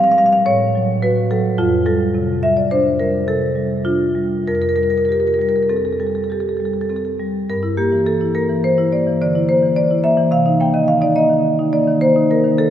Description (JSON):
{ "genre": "classical, contemporary piece for solo marimba", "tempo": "94-109 BPM", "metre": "5/4", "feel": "rubato", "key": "G dorian", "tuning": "A4 = 439 Hz", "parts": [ { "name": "marimba with medium mallets", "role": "solo", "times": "0.0-12.7 s", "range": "F2 to G5", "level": "-14 LUFS", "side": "equal", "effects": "none" } ], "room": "wet cathedral reverb, RT60 4.7 s", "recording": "recorded in a church or concert hall", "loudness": "-14 LUFS", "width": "side -10 dB against mid", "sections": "0.0-7.5 A section; 7.5-12.7 B section", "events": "none", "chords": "0.5 A6; 1.6 F69; 4.5 Fadd9; 7.5 Gm6; 10.3 Cm7" }